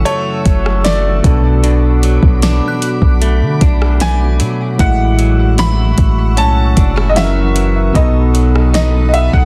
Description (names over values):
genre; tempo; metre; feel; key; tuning
contemporary R&B; 76 BPM; 4/4; straight; F# minor; A4 = 442 Hz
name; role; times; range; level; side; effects
barky tine electric piano; accompaniment; 0.0-9.4 s; A2 to A#4; -21 LUFS; equal; overdrive
glassy FM pad; sustained chords; 0.0-9.4 s; F#4 to E6; -28 LUFS; equal; ensemble chorus, built-in reverb
direct-recorded clean electric guitar; arpeggios; 0.0-9.4 s; F#2 to E4; -24 LUFS; equal; tape echo
long sustained 808-style bass; bass; 0.0-9.4 s; F#1 to D3; -16 LUFS; equal; none
clear baby grand piano; melody; 0.1-9.4 s; C#5 to B5; -21 LUFS; equal; tape echo
smooth R&B drum kit; drums; 0.1-9.4 s; hi-hat, kick drum, rim click, snare drum; -17 LUFS; equal; none
synth chime; texture; 0.1-9.4 s; A5 to F#6; -31 LUFS; equal; ensemble chorus, tape echo
room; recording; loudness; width
little or no reverb; dense, heavily limited modern master; -12 LUFS; mono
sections
0.0-9.4 A section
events
none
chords
0.0 F#m7; 1.2 Bm7; 4.8 F#m7/A; 7.2 F#7; 8.0 B7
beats
0.06 0.85 | 1.64 2.42 3.21 4.00 | 4.79 5.58 6.37 7.16 | 7.95 8.74